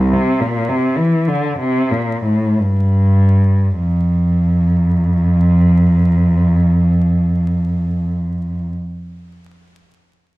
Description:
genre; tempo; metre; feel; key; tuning
classical, baroque-style suite movement for unaccompanied cello; 47-70 BPM (dotted quarters); 12/8; rubato; F major; A4 = 440 Hz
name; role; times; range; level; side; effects
warm cello; solo; 0.0-8.7 s; C2 to E3; -13 LUFS; equal; none
room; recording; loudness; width
light reverb; dark, warm production, vinyl crackle; -13 LUFS; side -19 dB against mid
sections
0.0-3.8 A section; 3.8-8.1 B section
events
slowing down 0.0-3.8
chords
none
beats
0.70 1.59 2.61 | 3.79 4.86 5.94 7.01

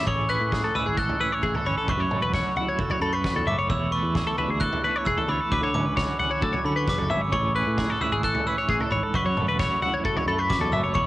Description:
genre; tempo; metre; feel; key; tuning
math rock and midwest emo; 132 BPM; 4/4; straight; A major; A4 = 440 Hz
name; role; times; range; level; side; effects
glockenspiel with hard plastic mallets; melody; 0.0-11.1 s; B5 to F#6; -28 LUFS; right 1 dB; cassette tape
twelve-string electric guitar; accompaniment; 0.0-11.1 s; E2 to G#4; -31 LUFS; right 5 dB; tremolo
twelve-string electric guitar; arpeggios; 0.0-11.1 s; G#4 to F#5; -27 LUFS; left 3 dB; none
picked electric bass; bass; 0.1-11.1 s; E1 to D3; -29 LUFS; equal; none
loose indie drum kit; drums; 0.1-11.1 s; kick drum, snare drum, toms; -30 LUFS; equal; cassette tape
room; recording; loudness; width
small room ambience; home recording on cassette; -22 LUFS; side -16 dB against mid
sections
0.1-11.1 A section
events
none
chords
0.1 Amaj9; 1.9 F#m7; 3.7 E7sus4; 5.5 Dmaj9; 7.3 Amaj9; 9.1 F#m7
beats
| 0.07 0.52 0.97 1.43 | 1.88 2.34 2.79 3.25 | 3.70 4.15 4.61 5.06 | 5.51 5.97 6.42 6.87 | 7.33 7.78 8.23 8.69 | 9.14 9.59 10.04 10.50 | 10.95

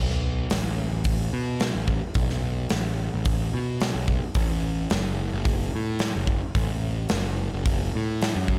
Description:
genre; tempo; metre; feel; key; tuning
indie rock; 109 BPM; 4/4; straight; unclear; A4 = 440 Hz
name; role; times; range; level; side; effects
fuzz picked electric bass; bass; 0.0-8.6 s; F#1 to B2; -29 LUFS; equal; overdrive
big rock drum kit; drums; 0.1-8.6 s; hi-hat, kick drum, snare drum; -29 LUFS; equal; none
room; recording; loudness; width
little or no reverb; none; -26 LUFS; mono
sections
0.0-8.6 A section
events
none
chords
none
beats
0.52 1.07 1.62 | 2.17 2.72 3.27 3.82 | 4.37 4.92 5.47 6.02 | 6.57 7.12 7.67 8.22

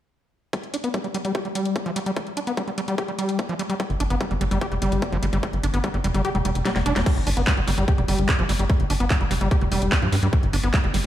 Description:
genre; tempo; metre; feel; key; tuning
psychedelic trance; 147 BPM; 4/4; straight; unclear; A4 = 440 Hz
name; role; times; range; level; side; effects
overdriven acid bass; riff; 0.5-11.0 s; F3 to G4; -25 LUFS; equal; distortion, auto-pan, sidechain pumping, tape echo
drum and bass drum kit; drums; 0.5-11.0 s; crash cymbal, handclaps, hi-hat, snare drum; -29 LUFS; equal; overdrive
electronic kick drum; drums; 0.5-10.8 s; none; -22 LUFS; equal; overdrive, high-pass filter on kick
tight sequencer bass; bass; 3.9-11.0 s; F1 to G2; -23 LUFS; equal; none
room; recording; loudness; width
light reverb; played on a big sound system in a bare room, large studio reverb; -20 LUFS; side -12 dB against mid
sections
0.5-7.1 A section; 7.1-11.1 B section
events
filter sweep on acid bass 0.5-7.1, 7.1-11.1; kick drops out 6.2-7.1; drum fill 6.7-7.1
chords
0.5 G5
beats
| 0.53 0.94 1.35 1.76 | 2.17 2.57 2.98 3.39 | 3.80 4.21 4.61 5.02 | 5.43 5.84 6.25 6.66 | 7.06 7.47 7.88 8.29 | 8.70 9.10 9.51 9.92 | 10.33 10.74

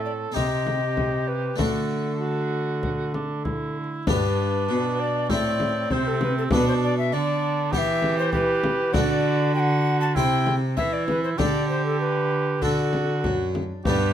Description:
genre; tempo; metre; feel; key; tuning
classical, renaissance-style consort dance; 98 BPM; 4/4; straight; unclear; A4 = 440 Hz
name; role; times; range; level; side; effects
mellow cor anglais; second line; 0.0-14.1 s; C4 to A4; -28 LUFS; right 5 dB; none
harpsichord; accompaniment; 0.0-14.1 s; F#2 to C5; -29 LUFS; left 2 dB; none
rich cello; bass; 0.0-14.1 s; F#2 to E3; -26 LUFS; right 2 dB; none
hollow alto recorder; melody; 0.1-14.1 s; A4 to A5; -27 LUFS; left 4 dB; none
frame drum; percussion; 0.4-14.1 s; none; -28 LUFS; left 2 dB; none
room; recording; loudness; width
light reverb; close, detailed microphones; -21 LUFS; side -10 dB against mid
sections
0.0-4.1 A section; 4.1-14.1 B section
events
none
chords
0.4 Cm; 1.6 D; 4.1 G; 5.3 Am; 6.5 Bm; 7.7 Em; 8.9 D; 10.2 C; 11.4 Dsus4; 12.6 D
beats
0.36 0.97 | 1.59 2.21 2.83 3.45 | 4.07 4.69 5.30 5.91 | 6.52 7.12 7.73 8.34 | 8.94 9.55 10.16 10.78 | 11.39 12.00 12.62 13.24 | 13.86

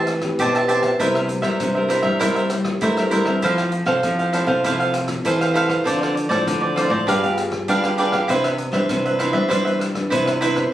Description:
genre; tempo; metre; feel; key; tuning
samba and choro; 99 BPM; 4/4; straight; C major; A4 = 439 Hz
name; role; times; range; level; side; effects
cavaquinho; accompaniment; 0.0-10.7 s; D4 to A5; -20 LUFS; right 2 dB; none
nylon-string guitar; accompaniment; 0.0-10.7 s; G2 to B4; -26 LUFS; left 3 dB; none
nylon-string guitar; bass; 0.0-10.6 s; G2 to A3; -22 LUFS; equal; none
swinging big-band drum kit; drums; 0.1-10.7 s; hi-hat, kick drum, rim click; -30 LUFS; equal; none
room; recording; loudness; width
moderate large studio reverb, RT60 0.9 s; recorded on a phone in the room, studio reverb; -17 LUFS; side -13 dB against mid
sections
0.0-10.7 A section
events
none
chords
0.0 Am9; 1.0 C7; 3.4 Fmaj7; 5.9 Dm9; 7.1 G7b9; 8.3 Cmaj9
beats
0.39 | 1.00 1.60 2.21 2.82 | 3.43 4.04 4.65 5.26 | 5.86 6.47 7.08 7.69 | 8.30 8.90 9.51 10.12

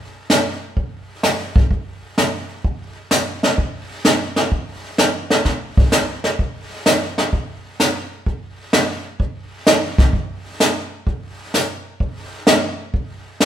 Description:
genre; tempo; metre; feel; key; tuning
country; 128 BPM; 4/4; swing 68% on 8ths; none; none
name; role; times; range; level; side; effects
jazz brush drum kit; drums; 0.3-13.5 s; brushed snare drum, hi-hat, kick drum, snare drum; -16 LUFS; equal; none
room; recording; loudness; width
moderate stone room reverb, RT60 1.0 s; band playing live in one room; -17 LUFS; side -10 dB against mid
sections
0.0-13.5 A section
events
none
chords
none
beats
0.30 0.77 1.24 | 1.70 2.17 2.64 3.11 | 3.58 4.05 4.52 4.99 | 5.46 5.92 6.39 6.86 | 7.33 7.80 8.26 8.73 | 9.20 9.67 10.13 10.60 | 11.07 11.54 12.00 12.47 | 12.94 13.40

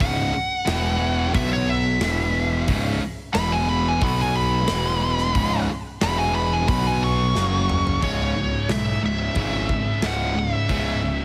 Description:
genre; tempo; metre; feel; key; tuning
hard rock; 90 BPM; 4/4; straight; C# minor; A4 = 442 Hz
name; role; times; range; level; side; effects
nasal lead guitar with a parked wah; melody; 0.0-11.2 s; C#5 to C#6; -27 LUFS; equal; overdrive, digital delay
distorted electric guitar; riff; 0.0-11.2 s; C#2 to B3; -31 LUFS; equal; overdrive
high-gain distorted guitar; riff; 0.0-11.2 s; C#2 to B3; -30 LUFS; equal; distortion
fuzz picked electric bass; bass; 0.0-11.2 s; C#1 to B1; -28 LUFS; equal; overdrive
big rock drum kit; drums; 0.0-10.8 s; hi-hat, kick drum, snare drum, toms; -30 LUFS; equal; none
heavy high-gain guitar; riff; 8.0-11.2 s; C#2 to C#3; -35 LUFS; equal; distortion
room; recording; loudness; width
light reverb, small room ambience; heavily compressed radio sound; -22 LUFS; mono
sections
0.0-8.0 A section; 8.0-11.2 B section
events
lead electric guitar solo 0.0-8.0; drum fill 7.4-8.0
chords
0.0 C#5; 0.7 E5; 1.4 B5; 2.0 E5; 2.7 C#m; 3.4 E5; 4.0 B5; 4.7 E5; 5.4 C#5; 6.0 E5; 6.7 B5; 7.4 F#5; 8.0 C#m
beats
| 0.01 0.68 1.35 2.02 | 2.69 3.36 4.03 4.69 | 5.36 6.03 6.69 7.36 | 8.03 8.69 9.36 10.03 | 10.69

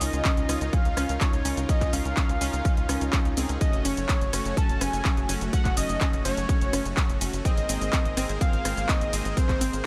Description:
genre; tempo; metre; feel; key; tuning
progressive house; 125 BPM; 4/4; straight; Db major; A4 = 438 Hz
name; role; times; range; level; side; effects
unison lead; melody; 0.0-9.9 s; C5 to A5; -34 LUFS; equal; cassette tape, sidechain pumping, dub echo
warm analog pad; sustained chords; 0.0-9.9 s; Db3 to Bb4; -40 LUFS; equal; none
analog pluck; arpeggios; 0.0-9.7 s; C4 to Db4; -36 LUFS; equal; chorus, sidechain pumping, dub echo
soft supersaw; stabs; 0.0-9.9 s; A3 to C5; -38 LUFS; equal; sidechain pumping, dub echo
tight sequencer bass; bass; 0.0-9.8 s; Gb1 to Db2; -33 LUFS; equal; sidechain pumping
house drum kit; drums; 0.0-9.8 s; handclaps, hi-hat, ride cymbal, rim click, shaker; -34 LUFS; equal; overdrive
electronic kick drum; drums; 0.2-9.6 s; none; -27 LUFS; equal; overdrive
room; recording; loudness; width
digital ambience; none; -25 LUFS; mono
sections
0.0-9.9 A section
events
none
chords
0.0 Dbadd9; 3.6 Gbm; 7.5 Abadd9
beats
0.25 0.73 1.21 | 1.69 2.17 2.65 3.13 | 3.61 4.09 4.57 5.05 | 5.53 6.01 6.49 6.97 | 7.45 7.93 8.41 8.89 | 9.37 9.85

